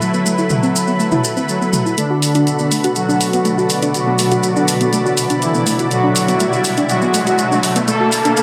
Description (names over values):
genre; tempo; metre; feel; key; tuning
melodic techno; 122 BPM; 4/4; straight; B minor; A4 = 440 Hz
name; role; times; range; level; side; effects
analog synth brass; melody; 0.0-8.4 s; D3 to A4; -20 LUFS; equal; chorus, tape echo
lush unison pad; sustained chords; 0.0-8.4 s; D3 to B4; -25 LUFS; equal; chorus
swarming drone; drone; 0.0-8.4 s; B2 to D3; -28 LUFS; equal; built-in reverb
maracas; percussion; 0.0-8.4 s; none; -26 LUFS; equal; none
granular cloud pad; texture; 0.0-8.4 s; A4 to B5; -27 LUFS; equal; built-in reverb
soft round pluck; arpeggios; 0.1-8.3 s; A3 to F#4; -23 LUFS; equal; chorus, digital delay
punchy analog drum machine; drums; 0.5-8.4 s; hi-hat, toms; -25 LUFS; equal; none
riser; sound effects; 5.0-8.4 s; none; -26 LUFS; equal; none
room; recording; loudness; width
moderate lush hall reverb, RT60 2.0 s; none; -16 LUFS; mono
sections
0.0-2.0 A section; 2.0-8.4 B section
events
filter sweep on drum 0.0-2.0; build-up 2.0-8.4; filter sweep on analog synth pad 2.0-8.4; riser 5.2-8.4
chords
0.0 Asus2; 2.0 Bm7